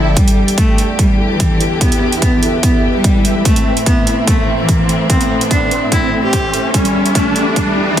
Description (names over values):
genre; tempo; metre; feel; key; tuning
heavy wobble dubstep; 146 BPM; 4/4; swing 53% on 16ths, half-time; E minor; A4 = 439 Hz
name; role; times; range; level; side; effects
rich cello; melody; 0.0-8.0 s; E3 to G4; -17 LUFS; equal; tape echo
rich studio string section; sustained chords; 0.0-8.0 s; E2 to A4; -21 LUFS; equal; sidechain pumping
swell and riser; sound effects; 0.0-8.0 s; none; -21 LUFS; equal; none
ethereal airy pad; texture; 0.0-8.0 s; E4 to C6; -22 LUFS; left 1 dB; ensemble chorus, built-in reverb, tremolo, sidechain pumping
electronic hi-hat; drums; 0.2-8.0 s; none; -20 LUFS; right 2 dB; studio reverb
electronic kick drum; drums; 0.2-8.0 s; none; -15 LUFS; equal; studio reverb
room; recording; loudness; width
light reverb, digital ambience; high-pass filter; -11 LUFS; side -10 dB against mid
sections
0.2-8.0 A section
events
swell 0.0; build-up 0.2-8.0; riser 0.2-8.0; drum fill 6.7-8.0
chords
0.2 Em7; 3.5 Am; 6.7 Em7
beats
| 0.17 0.58 0.99 1.40 | 1.81 2.22 2.63 3.04 | 3.45 3.87 4.28 4.69 | 5.10 5.51 5.92 6.33 | 6.74 7.15 7.56 7.97